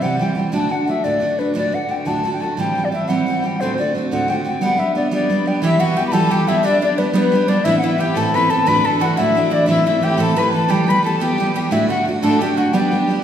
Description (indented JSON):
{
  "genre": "celtic folk",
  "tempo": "118 BPM (dotted quarters)",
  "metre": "6/8",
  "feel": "straight",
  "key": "unclear",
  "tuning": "A4 = 440 Hz",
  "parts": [
    { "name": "mellow wooden flute", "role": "melody", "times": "0.0-13.2 s", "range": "B4 to B5", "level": "-19 LUFS", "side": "left 3 dB", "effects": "none" },
    { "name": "picked steel-string acoustic guitar", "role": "accompaniment", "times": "0.0-13.2 s", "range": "D2 to G4", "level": "-18 LUFS", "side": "right 2 dB", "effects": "none" },
    { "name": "bowl-back mandolin", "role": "second line", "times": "5.6-13.2 s", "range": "B3 to B4", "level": "-28 LUFS", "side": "right 3 dB", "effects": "none" },
    { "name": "clear fiddle", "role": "second line", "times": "5.6-13.2 s", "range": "B3 to B4", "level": "-26 LUFS", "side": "left 4 dB", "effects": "none" }
  ],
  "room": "wet recital hall reverb, RT60 1.7 s",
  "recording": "heard from further back in the room",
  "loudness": "-15 LUFS",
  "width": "side -9 dB against mid",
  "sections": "0.0-5.6 A section; 5.6-13.2 B section",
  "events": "none",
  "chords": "0.0 C; 0.5 D; 2.6 Am7; 3.6 D7; 4.6 G; 5.6 Em; 6.6 G; 7.7 Amadd9; 8.7 Dadd9; 9.7 Am; 10.7 Em; 11.7 D; 12.7 G"
}